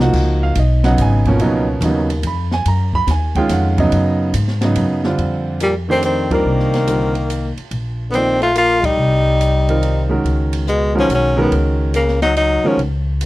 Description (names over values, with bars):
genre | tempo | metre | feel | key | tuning
modal jazz | 142 BPM | 3/4 | swing 66% on 8ths | unclear | A4 = 439 Hz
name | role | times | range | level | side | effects
clear baby grand piano | accompaniment | 0.0-12.8 s | Cb3 to Cb6 | -18 LUFS | right 2 dB | none
upright bass | bass | 0.0-13.3 s | Ab1 to Ab2 | -18 LUFS | equal | none
open jazz drum kit | drums | 0.0-13.3 s | crash cymbal, hi-hat, kick drum, ride cymbal, snare drum | -27 LUFS | equal | none
clear tenor saxophone | melody | 5.6-12.8 s | G3 to F4 | -17 LUFS | equal | none
bright trombone | second line | 5.6-13.3 s | Bb2 to Bb3 | -23 LUFS | left 4 dB | none
room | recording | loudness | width
small room ambience | dry, close 1970s-style studio recording | -14 LUFS | side -17 dB against mid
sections
0.0-5.2 A section; 5.2-13.3 B section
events
band accent 6.2, 8.8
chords
0.1 Db9sus4; 5.2 F9sus4; 10.2 Db9sus4